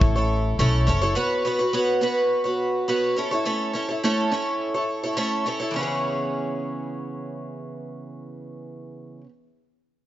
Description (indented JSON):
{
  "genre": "pop",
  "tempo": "105 BPM",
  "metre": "4/4",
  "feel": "straight",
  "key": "E major",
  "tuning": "A4 = 439 Hz",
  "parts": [
    { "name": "picked twelve-string acoustic guitar", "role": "accompaniment", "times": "0.0-9.3 s", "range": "C#3 to C#5", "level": "-23 LUFS", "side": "right 1 dB", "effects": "none" },
    { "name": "upright bass", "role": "bass", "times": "0.0-1.1 s", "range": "F#1 to B1", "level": "-21 LUFS", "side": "equal", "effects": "none" }
  ],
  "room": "light reverb, small room ambience",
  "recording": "dark, warm production, nothing above 7.7 kHz",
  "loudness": "-21 LUFS",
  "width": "side -13 dB against mid",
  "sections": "0.0-5.7 A section; 5.7-8.0 B section",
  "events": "none",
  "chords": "0.0 A; 1.2 Bsus2; 3.2 A; 5.7 E6",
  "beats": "0.02 0.59 | 1.16 1.73 2.31 2.88 | 3.45 4.03 4.60 5.17 | 5.74 6.32 6.89 7.46"
}